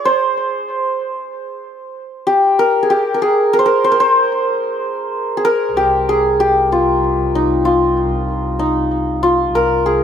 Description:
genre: Persian modal ensemble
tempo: 63 BPM (dotted quarters)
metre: 6/8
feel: straight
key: C dastgah shur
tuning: A4 = 440 Hz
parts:
  - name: santur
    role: melody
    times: 0.0-10.0 s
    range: Eb4 to Db5+45c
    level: -14 LUFS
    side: left 1 dB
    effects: plate reverb, tape echo
  - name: warm double bass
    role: drone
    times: 5.7-10.0 s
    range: C2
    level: -22 LUFS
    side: right 1 dB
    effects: stereo widening
room: wet small room reverb, RT60 0.5 s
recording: none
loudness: -13 LUFS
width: side -8 dB against mid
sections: 0.0-5.7 A section; 5.7-10.0 B section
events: none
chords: none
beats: | 0.06 1.00 | 1.95 2.90 | 3.85 4.79 | 5.74 6.68 | 7.63 8.58 | 9.53

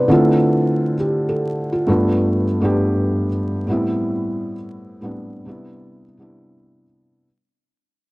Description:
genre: hip hop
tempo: 67 BPM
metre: 4/4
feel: swing 62% on 16ths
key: D dorian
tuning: A4 = 442 Hz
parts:
  - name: felt-muted upright piano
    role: accompaniment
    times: 0.0-7.3 s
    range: G2 to D5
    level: -17 LUFS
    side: equal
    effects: plate reverb
room: wet studio reverb, RT60 0.6 s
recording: vinyl crackle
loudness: -16 LUFS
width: side -22 dB against mid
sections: 0.1-7.3 A section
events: fade-out 0.1-7.3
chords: 0.1 Dm9; 1.9 G7; 3.7 Am9; 5.5 Cmaj7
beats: | 0.09 0.99 1.88 2.78 | 3.67 4.57 5.46 6.36

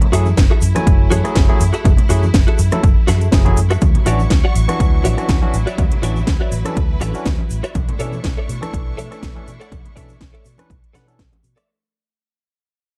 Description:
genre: nu-disco, nu disco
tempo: 122 BPM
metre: 4/4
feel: swing 54% on 16ths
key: unclear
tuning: A4 = 439 Hz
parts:
  - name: clear symphonic string section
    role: sustained chords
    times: 0.0-11.6 s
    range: F#3 to C#6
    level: -34 LUFS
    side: equal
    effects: sidechain pumping
  - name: house drum kit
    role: drums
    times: 0.0-11.7 s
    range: hi-hat, rim click, snare drum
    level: -26 LUFS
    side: equal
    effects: overdrive
  - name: congas and tube shaker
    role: percussion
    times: 0.0-11.7 s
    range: none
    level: -29 LUFS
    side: equal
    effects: none
  - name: barky tine electric piano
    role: accompaniment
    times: 0.1-11.2 s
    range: E3 to G#5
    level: -26 LUFS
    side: equal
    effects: sidechain pumping, slapback echo
  - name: direct-recorded clean electric guitar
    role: riff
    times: 0.1-11.7 s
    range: F#4 to F#5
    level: -26 LUFS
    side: equal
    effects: ensemble chorus
  - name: fingered electric bass with an envelope filter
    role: bass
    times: 0.1-11.5 s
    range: F#1 to B2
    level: -20 LUFS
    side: equal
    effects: none
  - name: electronic kick drum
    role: drums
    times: 0.4-11.3 s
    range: none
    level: -18 LUFS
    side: equal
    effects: overdrive
room: digital ambience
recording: dark, warm production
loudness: -16 LUFS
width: mono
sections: 0.0-11.7 A section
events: drop 0.0-11.7; fade-out 3.8-11.7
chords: 0.0 F#m9; 3.8 Dmaj9; 7.8 Bm11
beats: 0.37 0.87 1.36 | 1.85 2.34 2.83 3.33 | 3.82 4.31 4.80 5.29 | 5.78 6.28 6.77 7.26 | 7.75 8.24 8.73 9.23 | 9.72 10.21 10.70 11.19

